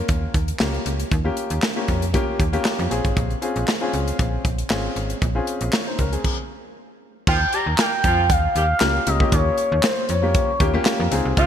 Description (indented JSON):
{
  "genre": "early-eighties boogie funk",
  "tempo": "117 BPM",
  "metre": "4/4",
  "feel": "straight",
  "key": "unclear",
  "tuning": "A4 = 440 Hz",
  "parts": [
    { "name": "clear grand piano", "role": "accompaniment", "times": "0.0-11.5 s", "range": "Bb3 to Db5", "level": "-25 LUFS", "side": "left 2 dB", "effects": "none" },
    { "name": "slap-like FM bass", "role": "bass", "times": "0.0-11.5 s", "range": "Ab1 to F2", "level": "-23 LUFS", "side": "right 1 dB", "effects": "none" },
    { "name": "modern studio drum kit", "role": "drums", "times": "0.1-11.5 s", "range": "crash cymbal, handclaps, hi-hat, kick drum, snare drum", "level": "-22 LUFS", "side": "equal", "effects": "none" },
    { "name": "expressive portamento lead", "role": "melody", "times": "7.3-11.5 s", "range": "C5 to Bb5", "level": "-21 LUFS", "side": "equal", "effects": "chorus" },
    { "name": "clear horn section", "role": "second line", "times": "7.3-11.5 s", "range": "F3 to Bb4", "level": "-26 LUFS", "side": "right 1 dB", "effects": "none" }
  ],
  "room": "moderate lush hall reverb, RT60 2.6 s",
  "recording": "bright 1980s-style digital production",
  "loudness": "-18 LUFS",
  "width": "side -9 dB against mid",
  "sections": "0.0-7.3 A section; 7.3-11.5 B section",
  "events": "stop 6.2-7.3",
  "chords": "0.0 Eb7; 2.9 Bbm9; 7.3 Eb7"
}